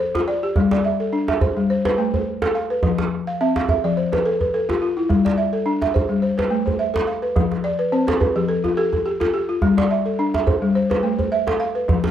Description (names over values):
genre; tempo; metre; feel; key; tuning
west african traditional, West African string and xylophone music; 106 BPM; 4/4; swing 54% on 16ths; unclear; A4 = 440 Hz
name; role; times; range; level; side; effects
balafon; arpeggios; 0.0-12.1 s; F3 to F5; -19 LUFS; left 1 dB; none
djembe; percussion; 0.2-12.1 s; none; -23 LUFS; right 2 dB; none
room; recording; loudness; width
little or no reverb; dry, close 1970s-style studio recording; -18 LUFS; side -10 dB against mid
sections
0.0-12.1 A section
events
balafon fill 3.3-5.1, 7.6-9.6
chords
0.0 F; 0.6 G5; 1.7 Am; 2.8 F; 5.1 G5; 6.2 Am; 7.4 F; 9.6 G5; 10.8 Am